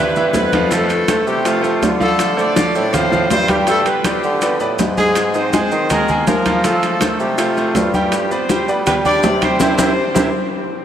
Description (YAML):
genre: latin, salsa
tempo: 162 BPM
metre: 4/4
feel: straight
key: C major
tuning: A4 = 440 Hz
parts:
  - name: clear horn section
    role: melody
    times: 0.0-10.7 s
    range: F3 to D5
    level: -19 LUFS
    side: left 1 dB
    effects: none
  - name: bright baby grand piano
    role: accompaniment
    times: 0.0-10.3 s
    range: E3 to Ab5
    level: -19 LUFS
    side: right 2 dB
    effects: none
  - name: clear bassoon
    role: bass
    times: 0.0-10.3 s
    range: F2 to G3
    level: -21 LUFS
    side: equal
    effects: none
  - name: bongos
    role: percussion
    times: 0.2-10.2 s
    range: none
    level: -26 LUFS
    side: left 5 dB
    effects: none
  - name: congas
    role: percussion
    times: 0.2-10.2 s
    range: none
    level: -23 LUFS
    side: left 1 dB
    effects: none
  - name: maracas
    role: percussion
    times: 0.2-10.2 s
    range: none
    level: -31 LUFS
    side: left 5 dB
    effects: none
  - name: timbales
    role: percussion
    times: 0.3-10.2 s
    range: none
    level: -24 LUFS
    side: right 4 dB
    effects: none
room: wet cathedral reverb, RT60 5.3 s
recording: in a vast, echoing space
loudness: -13 LUFS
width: side -9 dB against mid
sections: 0.0-10.8 A section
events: band accent 9.6-10.8; drum fill 10.3-10.8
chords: 0.0 Cmaj7 (rootless); 0.7 F; 2.2 Dm7; 3.7 G; 5.2 Absus2; 6.6 F; 8.1 G; 9.6 C